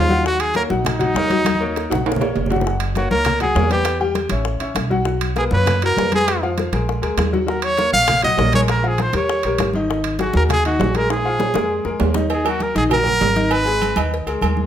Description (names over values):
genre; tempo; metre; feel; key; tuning
latin, salsa; 199 BPM; 4/4; straight; Eb minor; A4 = 443 Hz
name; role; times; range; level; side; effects
clear trumpet; melody; 0.0-14.1 s; Eb4 to F5; -19 LUFS; right 1 dB; none
bright upright piano; accompaniment; 0.0-14.7 s; Bb2 to G5; -22 LUFS; left 3 dB; none
upright bass; bass; 0.0-14.7 s; Gb1 to F#2; -22 LUFS; right 1 dB; none
bongos and cowbell; percussion; 0.1-14.6 s; none; -28 LUFS; left 5 dB; none
congas; percussion; 0.1-14.7 s; none; -26 LUFS; left 1 dB; none
timbales and agogo bells; percussion; 0.4-14.6 s; none; -26 LUFS; right 8 dB; none
room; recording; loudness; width
light reverb; minimal, uncompressed stereo recording; -16 LUFS; side -10 dB against mid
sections
0.0-2.7 A section; 2.7-12.3 B section; 12.3-14.7 C section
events
drum fill 1.5-2.7, 11.1-12.3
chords
0.3 Ebm7; 2.7 Gb; 3.9 Em7; 4.5 Aadd9; 5.1 Bsus2; 6.3 Fdim; 6.9 Bb7; 7.5 Ebm7; 8.7 Bb5; 9.3 Eb7; 9.9 Ab5; 11.1 Bb5; 12.3 Ebm; 13.5 Abmadd9